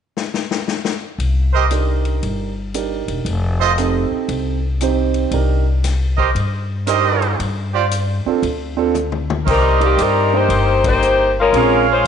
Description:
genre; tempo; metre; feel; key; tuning
jazz, big band swing; 116 BPM; 4/4; swing 66% on 8ths; C dorian; A4 = 441 Hz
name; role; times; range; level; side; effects
swinging big-band drum kit; drums; 0.2-11.7 s; crash cymbal, hi-hat, kick drum, ride cymbal, snare drum, toms; -26 LUFS; left 7 dB; none
upright bass; bass; 1.2-12.1 s; E1 to G2; -19 LUFS; left 1 dB; none
bright trumpet section; stabs; 1.5-12.1 s; F4 to F5; -19 LUFS; right 8 dB; none
warm grand piano; accompaniment; 1.7-11.8 s; C4 to D5; -21 LUFS; right 10 dB; none
clear saxophone section; melody; 9.5-12.1 s; Eb3 to C5; -14 LUFS; left 4 dB; none
room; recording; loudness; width
moderate echo chamber reverb, RT60 1.4 s, small room reverb; 1960s-style stereo with parts hard left and right, nothing above 10.4 kHz; -15 LUFS; side -8 dB against mid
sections
0.0-1.2 A section; 1.2-9.5 B section; 9.5-12.1 C section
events
drum fill 0.2-1.2, 8.9-9.5; band accent 10.8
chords
0.0 N.C.; 1.2 Cm7; 3.3 F7; 5.3 Cm7; 7.4 G7sus4; 9.5 Cm7; 11.5 Bbm7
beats
0.16 0.67 | 1.19 1.71 2.22 2.74 | 3.25 3.77 4.29 4.80 | 5.32 5.84 6.36 6.87 | 7.39 7.91 8.42 8.94 | 9.46 9.98 10.49 11.01 | 11.53 12.04

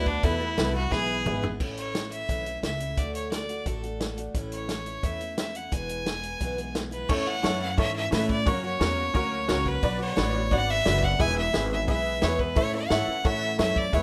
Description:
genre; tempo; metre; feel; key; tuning
honky-tonk and classic country; 175 BPM; 4/4; straight; A major; A4 = 439 Hz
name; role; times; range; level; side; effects
clear fiddle; melody; 0.0-14.0 s; D4 to G#5; -32 LUFS; equal; none
honky-tonk upright piano; accompaniment; 0.0-1.5, 7.1-14.0 s; B3 to F#5; -33 LUFS; equal; none
picked steel-string acoustic guitar; accompaniment; 0.0-14.0 s; E2 to F#4; -37 LUFS; equal; none
upright bass; bass; 0.0-14.0 s; E1 to A2; -34 LUFS; equal; none
vintage drum kit; drums; 0.1-14.0 s; crash cymbal, hi-hat, kick drum, snare drum, toms; -31 LUFS; equal; none
room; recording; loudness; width
moderate studio reverb, RT60 0.5 s; rough home demo mix; -27 LUFS; mono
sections
0.0-1.6 A section; 1.6-7.1 B section; 7.1-14.0 A section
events
drum fill 0.9-1.6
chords
0.2 Esus4; 0.9 E; 1.6 A; 3.0 D; 4.3 A; 5.7 E; 7.1 A; 8.5 F#; 9.8 Bm; 11.2 E; 12.6 A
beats
| 0.23 0.58 0.92 1.26 | 1.60 1.95 2.29 2.63 | 2.97 3.32 3.66 4.00 | 4.35 4.69 5.04 5.38 | 5.72 6.07 6.41 6.75 | 7.09 7.44 7.78 8.12 | 8.46 8.81 9.15 9.49 | 9.83 10.17 10.52 10.86 | 11.20 11.54 11.88 12.23 | 12.57 12.91 13.25 13.59 | 13.94

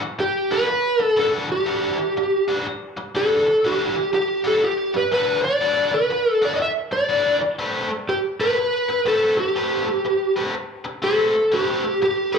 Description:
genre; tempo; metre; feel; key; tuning
blues; 122 BPM; 4/4; swing 64% on 8ths; E minor; A4 = 436 Hz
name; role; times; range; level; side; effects
biting overdriven guitar; riff; 0.0-12.4 s; E3 to B4; -27 LUFS; left 2 dB; spring reverb, slapback echo
overdriven slide guitar; melody; 0.2-12.4 s; G4 to E5; -19 LUFS; equal; slapback echo
room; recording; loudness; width
light reverb, digital ambience; live gig heard through the venue's PA, club reverb; -18 LUFS; side -6 dB against mid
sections
0.0-12.4 A section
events
none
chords
0.0 Em9; 7.6 Am9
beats
0.20 0.69 1.18 | 1.68 2.17 2.66 3.15 | 3.65 4.14 4.63 5.13 | 5.62 6.11 6.61 7.10 | 7.59 8.08 8.58 9.07 | 9.56 10.05 10.55 11.04 | 11.53 12.02

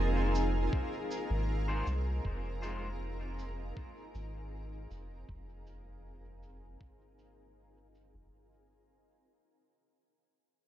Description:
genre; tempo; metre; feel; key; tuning
ambient dub; 79 BPM; 4/4; straight; F minor; A4 = 442 Hz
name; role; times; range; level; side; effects
granular cloud pad; sustained chords; 0.0-8.4 s; C4 to Bb4; -38 LUFS; right 1 dB; built-in reverb
soft dub sub bass; bass; 0.0-8.3 s; F1 to C2; -36 LUFS; equal; none
cabasa; drums; 0.3-8.1 s; none; -52 LUFS; right 3 dB; low-pass filter on perc, low-pass filter on room, dub echo
electronic kick drum; drums; 0.7-7.0 s; none; -37 LUFS; equal; none
electric guitar at the edge of break-up; stabs; 1.7-2.9 s; Ab3 to C5; -45 LUFS; left 2 dB; low-pass filter, dub echo
room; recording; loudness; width
light reverb; nothing above 10.9 kHz, faint mains hum; -33 LUFS; side -12 dB against mid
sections
0.0-8.3 A section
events
fade-out 0.0-8.3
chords
0.0 Fm7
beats
0.73 1.49 | 2.25 3.01 3.77 4.53 | 5.28 6.04 6.80 7.56

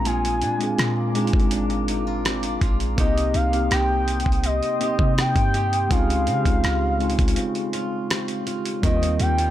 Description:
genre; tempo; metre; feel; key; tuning
contemporary R&B; 82 BPM; 4/4; straight; unclear; A4 = 440 Hz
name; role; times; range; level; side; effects
gliding portamento lead; melody; 0.0-9.5 s; Eb5 to Ab5; -25 LUFS; equal; chorus
mellow tine electric piano; accompaniment; 0.0-9.5 s; G3 to Ab4; -26 LUFS; left 2 dB; medium stereo tremolo
deep dark ambient pad; sustained chords; 0.0-9.5 s; G4 to Eb6; -32 LUFS; left 1 dB; chorus, built-in reverb, sidechain pumping
flamenco guitar; arpeggios; 0.0-9.5 s; Bb2 to G4; -31 LUFS; right 5 dB; none
clean 808-style bass; bass; 0.0-9.5 s; Ab1 to Db3; -24 LUFS; equal; none
dusty soul sampler-style drum kit; drums; 0.1-9.5 s; hi-hat, kick drum, rim click; -24 LUFS; equal; none
room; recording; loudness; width
little or no reverb; none; -19 LUFS; side -12 dB against mid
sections
0.0-8.8 A section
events
break 7.4-8.8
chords
0.0 Bb7; 3.0 Cm7; 5.9 Dbmaj7; 8.8 Eb69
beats
| 0.05 0.79 1.52 2.25 | 2.98 3.71 4.44 5.17 | 5.91 6.64 7.37 8.10 | 8.83

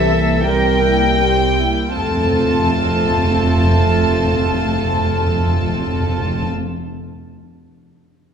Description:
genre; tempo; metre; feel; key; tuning
classical, slow romantic movement for symphony orchestra; 40 BPM; 4/4; rubato; F major; A4 = 440 Hz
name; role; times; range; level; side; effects
dark studio violin section; melody; 0.0-6.5 s; E5 to A5; -22 LUFS; left 2 dB; none
warm studio violin section; second line; 0.0-6.5 s; A4 to G5; -24 LUFS; left 1 dB; none
rich studio viola section; accompaniment; 0.0-6.4 s; Bb3 to G4; -22 LUFS; right 2 dB; none
mellow French horn section; sustained chords; 0.0-6.5 s; E3 to A3; -22 LUFS; left 1 dB; none
dark studio double bass section; bass; 0.0-6.4 s; F1 to C2; -23 LUFS; right 3 dB; none
warm studio cello section; bass; 0.0-6.5 s; F2 to Bb4; -23 LUFS; right 2 dB; none
timpani; percussion; 2.0-6.5 s; F2; -21 LUFS; left 1 dB; none
room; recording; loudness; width
wet concert hall reverb, RT60 1.9 s; none; -14 LUFS; side -7 dB against mid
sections
0.0-2.0 A section; 2.0-7.9 B section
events
slowing down 0.0-2.0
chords
0.0 C7; 2.0 F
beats
0.45 | 1.96 3.43 4.90 6.40

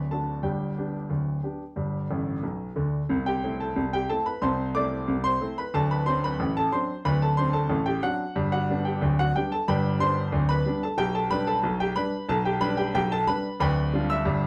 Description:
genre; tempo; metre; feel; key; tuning
ragtime piano; 91 BPM; 2/4; straight; G major; A4 = 438 Hz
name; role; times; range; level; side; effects
clear baby grand piano; solo; 0.0-14.5 s; D1 to E6; -26 LUFS; equal; none
room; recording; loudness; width
wet studio reverb, RT60 0.6 s; heard from further back in the room; -26 LUFS; mono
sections
0.0-3.1 A section; 3.1-14.5 B section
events
grand piano fill 2.1-3.1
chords
0.4 G; 3.1 Am/C; 5.7 D7; 11.0 G/B; 13.6 G7/D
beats
| 0.43 1.10 | 1.76 2.43 | 3.09 3.75 | 4.41 5.07 | 5.73 6.39 | 7.04 7.70 | 8.35 9.01 | 9.66 10.32 | 10.97 11.63 | 12.29 12.94 | 13.60 14.26

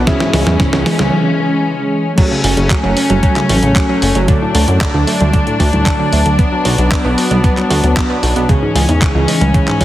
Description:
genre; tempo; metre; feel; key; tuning
italo disco; 114 BPM; 4/4; straight; F# minor; A4 = 440 Hz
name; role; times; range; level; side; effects
dark studio string section; sustained chords; 0.0-9.8 s; E3 to D4; -16 LUFS; left 2 dB; none
analog pluck; arpeggios; 0.0-9.8 s; G#2 to F#4; -18 LUFS; right 3 dB; chorus, tape echo
clear electric grand piano; stabs; 0.0-1.1 s; C#4 to E5; -23 LUFS; left 2 dB; tape echo
chorused synth bass; bass; 0.0-9.8 s; F#1 to F#2; -15 LUFS; equal; none
clean 12-bit digital drum machine; drums; 0.1-9.8 s; congas, crash cymbal, handclaps, hi-hat, snare drum; -18 LUFS; right 1 dB; studio reverb
electronic kick drum; drums; 0.1-9.8 s; none; -14 LUFS; equal; studio reverb
room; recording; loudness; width
moderate plate reverb, RT60 1.9 s; heavily compressed radio sound; -11 LUFS; side -14 dB against mid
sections
0.0-2.2 A section; 2.2-9.8 B section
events
drum fill 0.0-1.1; filter sweep on synth arpeggio sound 0.0-2.2; break 1.1-2.2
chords
0.1 C#m; 2.2 F#m; 4.3 D; 6.4 Bm; 8.5 C#m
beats
| 0.07 0.60 1.12 1.65 | 2.18 2.70 3.23 3.76 | 4.28 4.81 5.33 5.86 | 6.39 6.91 7.44 7.97 | 8.49 9.02 9.54

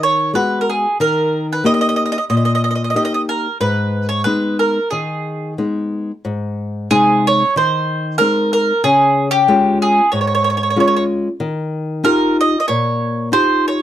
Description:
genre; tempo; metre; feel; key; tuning
italian folk; 93 BPM; 4/4; swing 53% on 8ths; G# minor, Ab major from 6.2 s; A4 = 440 Hz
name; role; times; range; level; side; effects
mandolin; melody; 0.0-13.8 s; G4 to D#5; -15 LUFS; right 2 dB; none
nylon-string guitar; accompaniment; 0.0-13.8 s; G#2 to G4; -18 LUFS; left 2 dB; none
room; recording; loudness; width
light reverb; dry, close 1970s-style studio recording; -14 LUFS; side -11 dB against mid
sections
0.0-6.2 A section; 6.2-13.8 B section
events
none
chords
0.0 G#m7; 1.0 D#; 3.6 G#m; 6.2 Ab; 8.8 Db; 11.4 Ebadd9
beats
0.34 | 0.98 1.63 2.28 2.93 | 3.59 4.24 4.90 5.57 | 6.23 6.89 7.54 8.19 | 8.84 9.48 10.12 10.76 | 11.40 12.04 12.68 13.32

